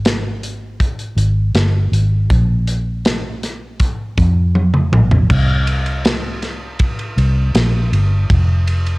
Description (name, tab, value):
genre	pop ballad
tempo	80 BPM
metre	4/4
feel	straight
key	unclear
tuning	A4 = 440 Hz
part	vintage muted fingered electric bass	bass	0.0-9.0 s	F1 to F2	-15 LUFS	equal	none
part	modern studio drum kit	drums	0.1-9.0 s	crash cymbal, hi-hat, kick drum, ride cymbal, snare drum, toms	-17 LUFS	equal	cassette tape
room	little or no reverb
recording	home recording on cassette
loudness	-13 LUFS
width	side -24 dB against mid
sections	0.0-5.3 A section; 5.3-9.0 B section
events	drum fill 4.5-5.3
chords	none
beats	0.05 0.80 1.55 | 2.30 3.05 3.80 4.55 | 5.30 6.05 6.80 7.55 | 8.30